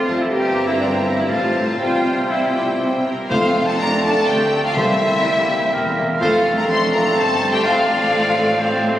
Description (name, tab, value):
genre	quick classical-period movement for symphony orchestra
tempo	124 BPM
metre	3/4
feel	straight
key	F major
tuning	A4 = 438 Hz
part	clear clarinet	second line	0.0-9.0 s	C4 to C5	-31 LUFS	left 1 dB	none
part	clear oboe	second line	0.0-9.0 s	G4 to Bb5	-25 LUFS	equal	none
part	silver concert flute	second line	0.0-8.8 s	C5 to C6	-24 LUFS	equal	none
part	rich studio viola section	accompaniment	0.0-9.0 s	G3 to G4	-23 LUFS	equal	none
part	warm bassoon	accompaniment	0.0-9.0 s	E3 to Bb3	-25 LUFS	right 1 dB	none
part	warm French horn section	sustained chords	0.0-7.8 s	G3 to G4	-26 LUFS	left 1 dB	none
part	rich studio violin section	melody	0.1-8.8 s	E5 to C6	-24 LUFS	left 2 dB	none
part	warm studio violin section	second line	0.1-8.8 s	E4 to G5	-27 LUFS	left 1 dB	none
part	rich studio double bass section	bass	0.1-9.0 s	E1 to D2	-30 LUFS	right 1 dB	none
part	warm studio cello section	bass	0.1-9.0 s	C2 to C3	-27 LUFS	equal	none
part	clear trumpet	stabs	3.3-7.8 s	C5	-30 LUFS	right 1 dB	none
part	timpani	percussion	3.3-6.9 s	F2 to C3	-28 LUFS	equal	none
room	wet cathedral reverb, RT60 5.0 s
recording	recorded on a phone in the room, studio reverb, nothing above 10.7 kHz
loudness	-15 LUFS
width	side -12 dB against mid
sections	0.0-3.3 A section; 3.3-9.0 B section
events	none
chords	0.3 C7/G; 1.3 F/A; 1.8 C; 3.3 F; 4.8 C7; 6.2 F; 7.6 F/A